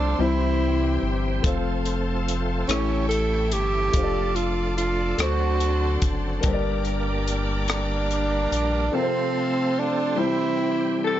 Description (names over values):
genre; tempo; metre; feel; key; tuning
slow gospel; 48 BPM (dotted quarters); 6/8; straight; F major; A4 = 440 Hz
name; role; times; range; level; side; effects
warm tenor saxophone; melody; 0.0-11.1 s; C4 to A4; -25 LUFS; right 3 dB; none
warm upright piano; accompaniment; 0.0-11.2 s; G2 to D5; -28 LUFS; left 4 dB; none
bright tonewheel organ; sustained chords; 0.0-11.2 s; C3 to Bb4; -31 LUFS; right 3 dB; slow rotary speaker, chorus vibrato
clear studio string section; sustained chords; 0.0-11.2 s; C5 to D6; -35 LUFS; left 3 dB; none
round analog bass; bass; 0.0-8.9 s; F1 to D2; -26 LUFS; equal; none
crisp fusion drum kit; drums; 1.4-8.7 s; hi-hat, kick drum, rim click; -26 LUFS; equal; none
edgy saxophone section; melody; 11.0-11.2 s; C4 to A4; -22 LUFS; left 5 dB; none
room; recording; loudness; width
light reverb, studio ambience; nothing above 7.6 kHz; -21 LUFS; side -12 dB against mid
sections
0.0-11.2 A section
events
none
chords
0.2 C; 1.4 F; 2.7 A7; 3.9 Dm/F; 5.2 D7; 6.4 Gm; 8.9 F/C; 10.2 C